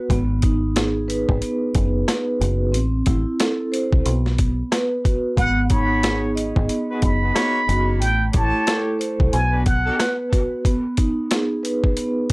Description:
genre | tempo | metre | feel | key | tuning
hip hop, boom-bap hip-hop | 91 BPM | 4/4 | swing 59% on 16ths | G# minor | A4 = 440 Hz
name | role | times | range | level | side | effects
vibraphone with soft mallets | accompaniment | 0.0-12.3 s | A3 to D#5 | -22 LUFS | right 1 dB | cassette tape
deep dub fingered electric bass | bass | 0.1-9.9 s | F#1 to C2 | -21 LUFS | equal | none
boom bap sampler-style drum kit | drums | 0.1-12.3 s | hi-hat, kick drum, rim click, snare drum | -20 LUFS | equal | none
trumpet with plunger mute | melody | 5.4-10.2 s | F#5 to B5 | -23 LUFS | equal | none
mellow trumpet section | stabs | 5.7-10.0 s | A#3 to C#5 | -32 LUFS | left 2 dB | analog delay
room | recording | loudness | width
light reverb | dry, gritty hardware recording, cassette tape | -18 LUFS | side -24 dB against mid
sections
0.0-12.3 A section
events
none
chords
0.1 G#m7; 2.7 Am; 4.1 B5; 5.4 G#m7; 8.0 Am7; 9.3 Bm; 10.6 G#m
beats
| 0.10 0.76 1.42 2.08 | 2.74 3.40 4.05 4.71 | 5.37 6.03 6.69 7.35 | 8.01 8.67 9.33 9.99 | 10.65 11.31 11.97

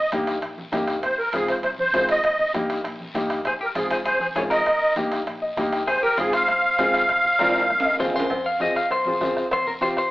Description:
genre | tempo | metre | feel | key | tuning
latin, cumbia | 198 BPM | 4/4 | straight | F minor | A4 = 440 Hz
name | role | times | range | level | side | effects
musette accordion | melody | 0.0-8.0 s | Ab4 to F5 | -20 LUFS | equal | none
fingered electric bass | bass | 0.0-10.0 s | Bb1 to Ab2 | -41 LUFS | equal | none
clear upright piano | accompaniment | 0.1-10.0 s | Bb3 to Ab5 | -26 LUFS | left 1 dB | none
bombo | percussion | 0.1-10.1 s | none | -34 LUFS | equal | none
congas | percussion | 0.1-10.0 s | none | -41 LUFS | equal | none
guiro | percussion | 0.1-10.1 s | none | -40 LUFS | left 2 dB | none
timbales and cowbell | percussion | 0.1-9.7 s | none | -32 LUFS | right 1 dB | none
clean electric guitar | second line | 3.5-10.1 s | F4 to F5 | -25 LUFS | left 1 dB | none
room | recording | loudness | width
wet large studio reverb, RT60 1.0 s | band playing live in one room, AM radio sound | -20 LUFS | side -18 dB against mid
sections
0.0-8.3 A section; 8.3-10.1 B section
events
upright piano fill 5.3-5.9, 7.7-8.3; drum fill 7.4-8.3; clean electric guitar solo 8.3-10.1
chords
0.0 Eb; 1.0 Fm; 2.2 Eb; 3.5 Fm; 4.7 Eb; 5.9 Fm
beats
0.12 0.42 0.73 | 1.03 1.33 1.64 1.94 | 2.24 2.55 2.85 3.15 | 3.46 3.76 4.06 4.36 | 4.67 4.97 5.27 5.58 | 5.88 6.18 6.49 6.79 | 7.09 7.39 7.70 8.00 | 8.30 8.61 8.91 9.21 | 9.51 9.82

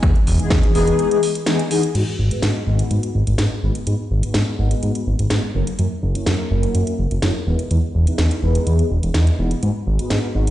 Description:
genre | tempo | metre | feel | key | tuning
filtered disco house | 125 BPM | 4/4 | straight | G# minor | A4 = 437 Hz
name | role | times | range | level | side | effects
mellow synth brass | accompaniment | 0.0-10.5 s | E3 to B4 | -23 LUFS | left 2 dB | chorus, phaser, sidechain pumping, low-pass filter
fat analog bass | bass | 0.0-10.5 s | E1 to G#2 | -17 LUFS | equal | tube saturation, sidechain pumping, low-pass filter
electronic kick drum | drums | 0.0-0.6 s | none | -17 LUFS | equal | overdrive
house drum kit | drums | 0.0-10.5 s | crash cymbal, hi-hat, snare drum | -26 LUFS | equal | sidechain pumping on hats, sidechain pumping on cymbals
room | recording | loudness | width
light reverb | played on a big sound system in a bare room, stone room reverb, nothing above 10.3 kHz | -16 LUFS | side -13 dB against mid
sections
0.0-1.9 A section; 1.9-10.5 B section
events
filter sweep 0.0-1.9, 1.9-10.5; break 1.0-1.9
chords
0.0 Emaj7; 1.9 G#m7; 5.5 F#7; 7.5 Emaj7; 9.6 G#m7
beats
| 0.03 0.51 0.99 1.47 | 1.95 2.43 2.91 3.39 | 3.87 4.35 4.83 5.31 | 5.79 6.27 6.75 7.23 | 7.71 8.19 8.67 9.15 | 9.63 10.11

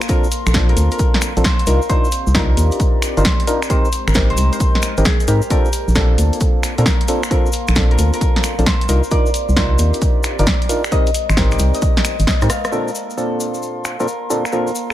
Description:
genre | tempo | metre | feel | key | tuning
UK garage, two-step garage | 133 BPM | 4/4 | swing 66% on 16ths | Bb major | A4 = 444 Hz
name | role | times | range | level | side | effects
Celtic harp | melody | 0.0-14.9 s | G4 to F5 | -25 LUFS | left 2 dB | tape echo
punchy analog drum machine | drums | 0.0-14.9 s | finger snaps, hi-hat, rim click, snare drum | -21 LUFS | equal | low-pass filter on hats, low-pass filter on snare, low-pass filter on room
cabasa | percussion | 0.0-14.9 s | none | -30 LUFS | left 4 dB | none
warbly tape-like pad | texture | 0.0-14.9 s | Ab3 to C6 | -29 LUFS | equal | chorus, built-in reverb, sidechain pumping
percussive organ stab | stabs | 0.1-14.7 s | Bb2 to Bb4 | -22 LUFS | equal | chorus, tape echo
electronic kick drum | drums | 0.1-12.4 s | none | -18 LUFS | equal | none
organ-like FM bass | bass | 0.5-12.5 s | G1 to Bb2 | -15 LUFS | equal | none
room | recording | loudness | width
little or no reverb | none | -14 LUFS | side -13 dB against mid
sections
0.0-12.7 A section; 12.7-14.9 B section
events
drum fill 12.3-12.7; band accent 12.6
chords
0.0 Bbmaj7; 1.7 Cm11; 3.7 Abmaj9; 5.5 Bbmaj7; 8.9 Cm11; 10.9 Abmaj9; 12.7 Bbmaj7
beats
| 0.09 0.54 0.99 1.44 | 1.90 2.35 2.80 3.25 | 3.70 4.15 4.60 5.05 | 5.50 5.96 6.41 6.86 | 7.31 7.76 8.21 8.66 | 9.11 9.56 10.02 10.47 | 10.92 11.37 11.82 12.27 | 12.72 13.17 13.62 14.08 | 14.53

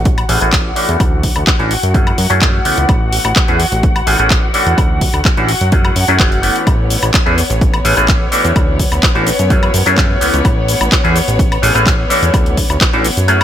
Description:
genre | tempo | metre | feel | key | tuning
filtered disco house | 127 BPM | 4/4 | straight | A major | A4 = 444 Hz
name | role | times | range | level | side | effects
warm studio violin section | sustained chords | 0.0-13.4 s | B3 to F#5 | -20 LUFS | left 1 dB | vintage 12-bit sampler grit, sidechain pumping, low-pass filter
fat analog bass | bass | 0.0-13.4 s | F#1 to F#2 | -16 LUFS | equal | tube saturation, sidechain pumping, low-pass filter
electronic kick drum | drums | 0.1-12.9 s | none | -14 LUFS | equal | studio ambience
house drum kit | drums | 0.1-13.4 s | handclaps, hi-hat, shaker, woodblock | -17 LUFS | left 1 dB | sidechain pumping on hats, studio ambience, sidechain pumping on perc, sidechain pumping on cymbals
clav | accompaniment | 0.3-13.4 s | E3 to B4 | -16 LUFS | equal | phaser, sidechain pumping, low-pass filter
room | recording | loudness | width
little or no reverb | none | -10 LUFS | side -10 dB against mid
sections
0.0-13.4 A section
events
filter sweep 0.0-13.4; kick drops out 13.3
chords
0.0 Amaj9; 1.0 Dmaj7; 1.9 F#m9; 2.9 Amaj9; 4.8 Dmaj7; 5.7 F#m9; 6.7 Amaj9; 8.6 Dmaj7; 9.5 F#m9; 10.4 Amaj9; 12.3 Dmaj7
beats
0.05 0.53 | 1.00 1.47 1.94 2.42 | 2.89 3.36 3.83 4.31 | 4.78 5.25 5.72 6.20 | 6.67 7.14 7.61 8.09 | 8.56 9.03 9.50 9.98 | 10.45 10.92 11.39 11.87 | 12.34 12.81 13.28

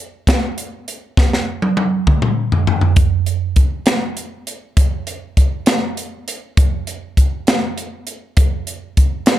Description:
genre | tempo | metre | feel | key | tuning
rock | 67 BPM (dotted quarters) | 6/8 | straight | none | none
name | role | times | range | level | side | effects
crisp fusion drum kit | drums | 0.3-9.4 s | hi-hat, kick drum, snare drum, toms | -14 LUFS | equal | none
room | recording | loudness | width
light reverb | dark, warm production | -15 LUFS | side -12 dB against mid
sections
0.0-3.0 A section; 3.0-9.4 B section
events
drum fill 1.2-3.0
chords
none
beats
0.28 | 1.18 2.08 | 2.98 3.88 | 4.78 5.68 | 6.58 7.48 | 8.38 9.28

